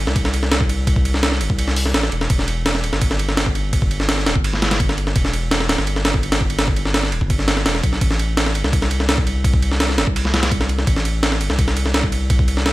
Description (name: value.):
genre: drum and bass, jungle.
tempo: 168 BPM.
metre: 4/4.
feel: straight.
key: A minor.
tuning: A4 = 440 Hz.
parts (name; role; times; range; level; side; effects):
saturated sub bass; bass; 0.0-12.7 s; D1 to C2; -21 LUFS; equal; tube saturation.
breakbeat sampler-style drum kit; drums; 0.1-12.7 s; hi-hat, kick drum, ride cymbal, snare drum; -18 LUFS; equal; studio reverb.
room: digital ambience.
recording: none.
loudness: -16 LUFS.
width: side -18 dB against mid.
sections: 0.0-12.7 A section.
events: none.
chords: none.